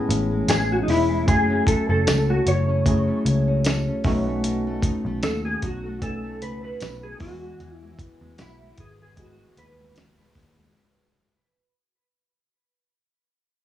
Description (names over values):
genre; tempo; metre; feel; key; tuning
indie pop, bedroom pop; 76 BPM; 4/4; swing 55% on 16ths; E major; A4 = 439 Hz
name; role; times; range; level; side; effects
nylon-string guitar; accompaniment; 0.0-11.3 s; A2 to A4; -32 LUFS; left 2 dB; lush chorus, vibrato effect
tine electric piano; accompaniment; 0.0-10.8 s; G3 to G#5; -27 LUFS; right 1 dB; medium stereo tremolo
vintage muted picked electric bass; bass; 0.1-10.7 s; E1 to E2; -25 LUFS; left 1 dB; none
dusty soul sampler-style drum kit; drums; 0.1-10.6 s; hi-hat, kick drum, snare drum; -24 LUFS; equal; none
mellow electric guitar; melody; 0.5-9.9 s; D#4 to C#5; -25 LUFS; left 1 dB; ensemble chorus
tambourine; percussion; 0.5-10.2 s; none; -38 LUFS; right 6 dB; none
room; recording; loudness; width
moderate studio ambience, RT60 0.5 s; worn, warbling old tape, cassette tape, warbly pitch drift, studio ambience; -19 LUFS; side -12 dB against mid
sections
0.0-10.8 A section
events
fade-out 0.0-10.8; clean electric guitar solo 0.0-10.8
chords
0.0 Amaj7; 1.3 F#m7; 4.0 B7; 7.2 Eadd9